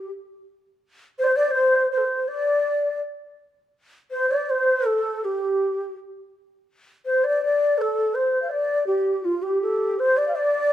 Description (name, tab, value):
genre	chinese traditional, Chinese chamber ensemble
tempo	82 BPM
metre	2/4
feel	rubato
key	D yu mode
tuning	A4 = 437 Hz
part	mellow xiao	melody	0.0-10.7 s	F4 to F5	-23 LUFS	right 2 dB	none
part	breathy mellow xiao	second line	0.0-10.7 s	F4 to D5	-23 LUFS	left 3 dB	none
room	moderate recital hall reverb, RT60 1.4 s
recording	none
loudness	-20 LUFS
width	side -12 dB against mid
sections	0.0-10.0 A section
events	none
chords	none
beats	0.46 | 1.18 1.91 | 2.64 3.39 | 4.13 4.87 | 5.60 6.34 | 7.06 7.78 | 8.50 9.24 | 9.98 10.72